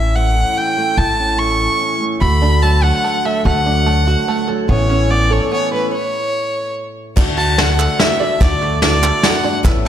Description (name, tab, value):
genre	indie folk with a building arrangement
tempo	145 BPM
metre	3/4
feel	straight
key	D major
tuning	A4 = 440 Hz
part	warm fiddle	melody	0.0-9.9 s	B4 to C#6	-18 LUFS	equal	slapback echo
part	fingerpicked steel-string acoustic guitar	accompaniment	0.0-9.9 s	D2 to F#4	-23 LUFS	right 1 dB	slapback echo
part	upright bass	bass	0.0-9.9 s	A1 to D2	-16 LUFS	equal	none
part	open-back banjo	arpeggios	2.2-9.9 s	A3 to D5	-22 LUFS	right 4 dB	slapback echo
part	dark upright piano	accompaniment	7.2-9.9 s	A1 to E5	-29 LUFS	right 4 dB	none
part	picked steel-string acoustic guitar	accompaniment	7.2-9.9 s	A2 to F#4	-26 LUFS	left 7 dB	slapback echo
part	vintage brush drum kit	drums	7.2-9.7 s	crash cymbal, hi-hat, kick drum, snare drum	-16 LUFS	equal	none
part	group handclap	percussion	7.2-9.9 s	none	-27 LUFS	right 6 dB	none
room	moderate concert hall reverb, RT60 2.0 s, small room ambience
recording	big arena sound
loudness	-13 LUFS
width	side -10 dB against mid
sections	0.0-7.2 A section; 7.2-9.9 B section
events	stop 5.9-7.2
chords	0.0 A; 2.2 D; 4.7 Aadd9; 7.2 D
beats	0.15 0.56 | 0.97 1.39 1.80 | 2.21 2.63 3.04 | 3.45 3.87 4.28 | 4.69 5.11 5.52 | 5.93 6.34 6.76 | 7.17 7.58 8.00 | 8.41 8.82 9.23 | 9.64